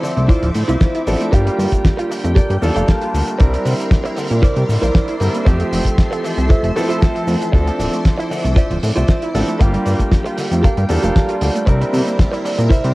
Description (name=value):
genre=nu-disco, nu disco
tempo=116 BPM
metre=4/4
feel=straight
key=unclear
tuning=A4 = 435 Hz
part: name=warm grand piano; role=accompaniment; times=0.0-12.9 s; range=F3 to A5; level=-21 LUFS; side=equal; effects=sidechain pumping, cassette tape, analog delay
part: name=string machine, full ensemble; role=sustained chords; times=0.0-12.9 s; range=A4 to D6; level=-28 LUFS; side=equal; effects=ensemble chorus, sidechain pumping, cassette tape
part: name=analog pluck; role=arpeggios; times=0.0-12.9 s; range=D3 to A4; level=-26 LUFS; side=right 1 dB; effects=chorus, sidechain pumping, cassette tape, analog delay
part: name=direct-recorded clean electric guitar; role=riff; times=0.0-12.9 s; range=E4 to F5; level=-23 LUFS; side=right 1 dB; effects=wide subtle chorus, cassette tape, analog delay
part: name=damped 70s drum kit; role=drums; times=0.0-12.9 s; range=hi-hat, shaker, snare drum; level=-24 LUFS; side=equal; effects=cassette tape
part: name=fat analog bass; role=bass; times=0.2-12.9 s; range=D1 to C3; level=-17 LUFS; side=equal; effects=none
part: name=kick drum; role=drums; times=0.3-12.8 s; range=none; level=-13 LUFS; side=equal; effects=cassette tape
room=light reverb, studio reverb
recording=home recording on cassette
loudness=-14 LUFS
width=side -20 dB against mid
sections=0.0-12.9 A section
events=none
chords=0.0 Dm9; 1.3 Gm9; 3.4 C9; 5.5 Fmaj7; 7.5 Dm9; 9.6 Gm9; 11.7 C9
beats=0.29 0.81 | 1.33 1.85 2.36 2.88 | 3.40 3.92 4.43 4.95 | 5.47 5.98 6.50 7.02 | 7.54 8.05 8.57 9.09 | 9.61 10.12 10.64 11.16 | 11.67 12.19 12.71